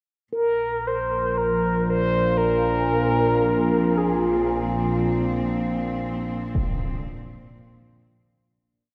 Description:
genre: dark ambient drone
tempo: 58 BPM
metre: 4/4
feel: straight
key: unclear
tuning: A4 = 439 Hz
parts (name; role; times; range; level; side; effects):
- mellow horn-like synth lead; melody; 0.3-4.5 s; Ab4 to C5; -26 LUFS; equal; chorus, vintage 12-bit sampler grit, tape echo
- overtone-sweeping drone; drone; 0.8-8.7 s; Bb1 to Bb2; -26 LUFS; equal; chorus, built-in reverb, phaser
- bronze singing bowl; texture; 0.3-8.6 s; Bb4; -36 LUFS; equal; none
- dark studio cello section; sustained chords; 0.4-8.6 s; Bb2 to C4; -33 LUFS; equal; none
- impact; percussion; 6.5-6.8 s; none; -30 LUFS; equal; low-pass filter on sfx
room: wet cathedral reverb, RT60 6.0 s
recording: in a vast, echoing space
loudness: -23 LUFS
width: mono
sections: 0.3-8.6 A section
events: fade-in on cello section 0.3-8.6; fade-in on impacts and reversed cymbals 0.3-8.6; fade-out 4.5-8.6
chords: 0.3 Bbsus2

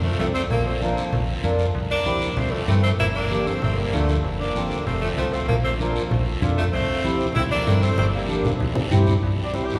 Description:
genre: latin, cumbia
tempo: 192 BPM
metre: 4/4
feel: straight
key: unclear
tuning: A4 = 440 Hz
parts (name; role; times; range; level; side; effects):
- clear saxophone section; melody; 0.0-9.8 s; D3 to G4; -28 LUFS; equal; none
- metallic FM bass; bass; 0.0-9.7 s; F1 to G2; -26 LUFS; equal; none
- congas; percussion; 0.0-9.7 s; none; -30 LUFS; equal; none
- mellow accordion; accompaniment; 0.2-9.8 s; Bb3 to Bb4; -30 LUFS; equal; none
- guiro; percussion; 0.2-9.8 s; none; -38 LUFS; equal; none
room: wet cathedral reverb, RT60 6.7 s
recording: recorded in a church or concert hall, small room ambience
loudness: -22 LUFS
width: mono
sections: 0.0-9.2 A section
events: drum fill 8.0-9.2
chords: 0.0 F; 0.5 Bb; 1.7 C6; 3.0 Gmadd9; 4.2 F; 5.5 Bb; 6.7 C6; 8.0 Gm; 8.6 C

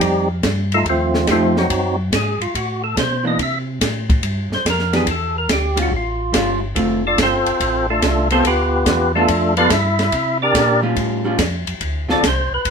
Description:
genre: soul jazz organ trio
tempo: 142 BPM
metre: 4/4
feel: swing 68% on 8ths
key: unclear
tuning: A4 = 441 Hz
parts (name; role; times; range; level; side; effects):
- percussive tonewheel organ; melody; 0.0-12.7 s; F3 to F5; -18 LUFS; equal; slow rotary speaker, overdrive
- mellow tonewheel organ; bass; 0.0-12.7 s; F1 to C3; -22 LUFS; equal; slow rotary speaker
- compact cocktail drum kit; drums; 0.0-12.7 s; hi-hat, kick drum, ride cymbal, snare drum; -21 LUFS; equal; none
- vintage hollow-body jazz guitar; accompaniment; 1.3-12.2 s; D3 to A4; -20 LUFS; equal; none
room: moderate small room reverb, RT60 0.5 s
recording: minimal, uncompressed stereo recording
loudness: -15 LUFS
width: side -6 dB against mid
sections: 0.0-12.7 A section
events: tonewheel organ solo 0.0-12.7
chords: 0.0 F9; 1.7 F#dim7; 3.4 C5; 5.1 Em7; 5.9 Aaug7; 6.8 Dm7; 8.4 G9; 10.1 C9; 11.0 Aaug7; 11.8 Dm7

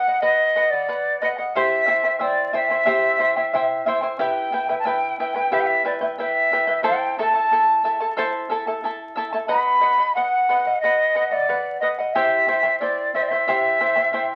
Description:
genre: andean folk, Andean ensemble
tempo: 90 BPM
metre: 4/4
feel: straight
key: unclear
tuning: A4 = 440 Hz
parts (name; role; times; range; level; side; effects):
- large quena; melody; 0.0-14.4 s; D5 to B5; -21 LUFS; equal; none
- charango; accompaniment; 0.0-14.4 s; E4 to A5; -26 LUFS; equal; none
room: wet studio reverb, RT60 0.7 s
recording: very old 78 rpm record, vinyl crackle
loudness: -20 LUFS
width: mono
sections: 0.0-14.4 A section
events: none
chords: 0.0 B; 1.5 C; 4.2 Em; 6.8 Am; 9.5 B; 12.1 C

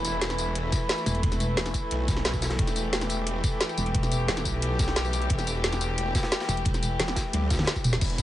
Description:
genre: dark technical drum and bass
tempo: 177 BPM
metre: 4/4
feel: straight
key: E minor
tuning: A4 = 440 Hz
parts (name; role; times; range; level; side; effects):
- warm studio string section; sustained chords; 0.0-8.2 s; E3 to G4; -31 LUFS; left 1 dB; sidechain pumping
- snarling distorted saw bass; bass; 0.0-8.2 s; E1 to D2; -30 LUFS; equal; tube saturation, sidechain pumping
- crunchy breakbeat drum kit; drums; 0.0-8.2 s; ride cymbal, snare drum; -37 LUFS; equal; high-pass filter on cymbals, high-pass filter on snare, high-pass filter on room
- drum and bass drum kit; drums; 0.0-8.2 s; crash cymbal, hi-hat, snare drum, tambourine, toms; -29 LUFS; equal; none
- electronic kick drum; drums; 0.7-8.2 s; none; -28 LUFS; equal; overdrive
- pulsing pluck wobble bass; bass; 1.1-1.6, 3.8-4.3, 6.5-8.0 s; E1; -28 LUFS; equal; chorus
room: light reverb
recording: nothing above 10.5 kHz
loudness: -24 LUFS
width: side -13 dB against mid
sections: 0.0-8.0 A section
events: drop 0.0-8.0; drum fill 7.3-8.0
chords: 0.0 E5

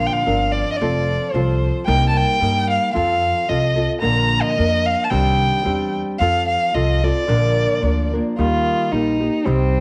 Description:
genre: mexican folk, mariachi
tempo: 111 BPM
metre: 2/4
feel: swing 55% on 8ths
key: Bb major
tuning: A4 = 440 Hz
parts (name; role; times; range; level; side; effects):
- dark violin; melody; 0.0-9.8 s; C4 to Bb5; -22 LUFS; equal; slapback echo
- nylon-string guitar; accompaniment; 0.0-9.8 s; Bb2 to Bb4; -24 LUFS; equal; none
- upright bass; bass; 0.0-9.8 s; F1 to G2; -23 LUFS; equal; none
room: light reverb, studio reverb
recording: none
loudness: -19 LUFS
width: mono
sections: 0.0-8.4 A section; 8.4-9.8 B section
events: none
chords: 0.0 Bbadd9; 0.8 F; 1.9 Cm7; 2.9 F; 4.0 Bb; 5.1 Cmadd9; 6.2 F; 7.3 Bb; 8.4 Eb

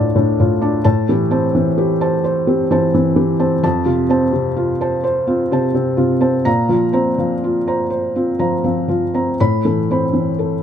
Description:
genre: neoclassical minimalist piano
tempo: 42 BPM (dotted quarters)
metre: 6/8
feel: rubato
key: A minor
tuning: A4 = 441 Hz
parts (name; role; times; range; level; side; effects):
- felt-muted upright piano; solo; 0.0-10.6 s; D2 to B5; -14 LUFS; equal; none
room: little or no reverb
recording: close, detailed microphones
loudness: -14 LUFS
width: side -9 dB against mid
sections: 0.0-10.6 A section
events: none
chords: 0.0 Dm; 0.8 Am7; 3.6 F; 6.5 Bbsus2; 9.4 Amadd9

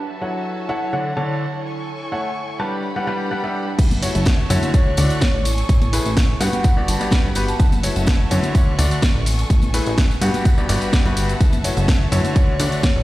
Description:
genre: piano house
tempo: 126 BPM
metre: 4/4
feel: swing 53% on 16ths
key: F# minor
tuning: A4 = 439 Hz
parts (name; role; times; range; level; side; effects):
- marimba with soft mallets; melody; 0.0-0.1, 4.7-7.7, 12.4-13.0 s; C#5 to A5; -30 LUFS; right 1 dB; tape echo
- rich chamber violin section; sustained chords; 0.0-13.0 s; D4 to F#6; -31 LUFS; equal; sidechain pumping, low-pass filter
- airy breathy pad; texture; 0.0-13.0 s; D3 to C#6; -32 LUFS; right 2 dB; chorus, sidechain pumping
- clear upright piano; riff; 0.2-12.9 s; G2 to A5; -23 LUFS; left 1 dB; sidechain pumping, tape echo
- plucky analog bass; bass; 3.8-13.0 s; F#1 to G2; -20 LUFS; equal; sidechain pumping
- electronic kick drum; drums; 3.8-12.9 s; none; -16 LUFS; equal; none
- house drum kit; drums; 3.8-12.9 s; crash cymbal, hi-hat, ride cymbal, shaker, snare drum; -26 LUFS; right 1 dB; none
- tambourine and congas; percussion; 3.8-12.9 s; none; -30 LUFS; left 5 dB; none
room: small room ambience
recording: played on a big sound system in a bare room, stone room reverb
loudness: -16 LUFS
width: side -16 dB against mid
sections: 0.0-3.8 A section; 3.8-13.0 B section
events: drop 3.8-13.0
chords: 0.0 F#m7; 0.9 Dmaj7; 1.6 Amaj7; 2.6 Gmaj7; 3.8 F#m7; 4.7 Dmaj7; 5.5 Amaj7; 6.4 Gmaj7; 7.6 F#m7; 8.5 Dmaj7; 9.3 Amaj7; 10.2 Gmaj7; 11.4 F#m7; 12.4 Dmaj7

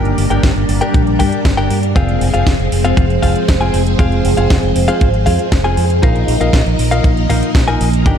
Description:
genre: italo disco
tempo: 118 BPM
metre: 4/4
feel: straight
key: F dorian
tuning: A4 = 440 Hz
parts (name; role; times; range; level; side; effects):
- string machine, full ensemble; sustained chords; 0.0-8.2 s; F3 to Eb5; -17 LUFS; equal; phaser, ensemble chorus
- direct-recorded clean electric guitar; stabs; 0.0-8.2 s; C4 to Ab5; -20 LUFS; left 4 dB; spring reverb, ping-pong delay
- fingered electric bass with an envelope filter; bass; 0.0-8.2 s; F1 to G2; -16 LUFS; equal; none
- house drum kit; drums; 0.1-8.2 s; hi-hat, snare drum; -24 LUFS; equal; none
- kick drum; drums; 0.4-8.2 s; none; -15 LUFS; equal; none
room: light reverb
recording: dark, warm production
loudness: -11 LUFS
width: side -8 dB against mid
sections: 0.0-8.2 A section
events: none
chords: 0.0 Gm; 2.0 Fm; 6.0 Bbsus4

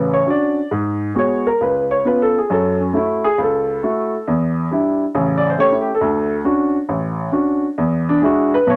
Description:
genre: solo jazz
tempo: 136 BPM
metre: 4/4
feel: swing 68% on 8ths, rubato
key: unclear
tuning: A4 = 439 Hz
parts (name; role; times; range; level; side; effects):
- warm upright piano; solo; 0.0-8.8 s; A1 to D5; -18 LUFS; equal; none
room: wet studio reverb, RT60 0.5 s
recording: none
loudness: -18 LUFS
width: mono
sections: 0.0-8.8 A section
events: upright piano solo 0.0-8.8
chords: 0.0 Dmaj7; 0.7 G#m11; 1.6 C#7; 2.5 F#m7; 4.3 Em7; 5.1 A7; 6.0 Dmaj7; 7.8 E7

